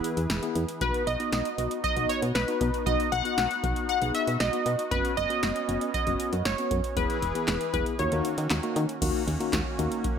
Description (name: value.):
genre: synth-pop.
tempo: 117 BPM.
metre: 4/4.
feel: straight.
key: unclear.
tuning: A4 = 435 Hz.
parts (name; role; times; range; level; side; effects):
funky polysynth comp; melody; 0.0-8.5 s; G#4 to F#5; -28 LUFS; equal; chorus, digital delay.
tine electric piano; accompaniment; 0.0-10.1 s; A#3 to B4; -33 LUFS; left 3 dB; medium stereo tremolo.
brassy analog pad; sustained chords; 0.0-10.2 s; D#3 to B4; -35 LUFS; right 1 dB; chorus.
electro analog drum machine; drums; 0.0-10.2 s; crash cymbal, handclaps, hi-hat, kick drum, snare drum; -32 LUFS; equal; none.
solid FM bass; bass; 0.2-9.9 s; E1 to D#3; -30 LUFS; equal; none.
room: moderate recital hall reverb, RT60 1.4 s.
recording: none.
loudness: -25 LUFS.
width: side -7 dB against mid.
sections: 0.0-9.0 A section; 9.0-10.2 B section.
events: none.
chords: 0.0 E; 0.8 B; 4.9 F#sus4; 7.0 E; 8.0 D#m7.